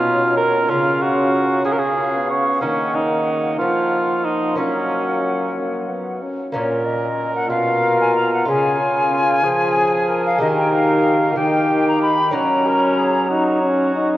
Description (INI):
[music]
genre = classical, renaissance-style consort dance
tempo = 62 BPM (dotted quarters)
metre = 6/8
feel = straight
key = unclear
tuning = A4 = 440 Hz
[part]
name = hollow concert flute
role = melody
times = 0.0-13.9 s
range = Db5 to Cb6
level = -22 LUFS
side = left 2 dB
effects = none
[part]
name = mellow cor anglais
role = second line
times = 0.0-14.1 s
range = Db4 to Db5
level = -21 LUFS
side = right 2 dB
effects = none
[part]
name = bright trombone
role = accompaniment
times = 0.0-14.2 s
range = Bb3 to Bb4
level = -22 LUFS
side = left 1 dB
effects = none
[part]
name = lute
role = accompaniment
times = 0.0-14.2 s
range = Bb2 to Bb4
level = -27 LUFS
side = equal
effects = none
[part]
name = brilliant trombone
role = bass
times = 0.0-14.2 s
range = Bb2 to Gb3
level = -24 LUFS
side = right 1 dB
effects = none
[sound]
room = wet cathedral reverb, RT60 5.9 s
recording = worn, warbling old tape, cassette tape, warbly pitch drift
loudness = -16 LUFS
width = side -14 dB against mid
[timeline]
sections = 0.0-6.5 A section; 6.5-14.2 A section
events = none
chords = 0.0 Bbm; 0.7 Db; 2.6 Ebm; 4.6 Gb; 6.5 Bbm; 8.5 Db; 10.4 Eb; 12.3 Gb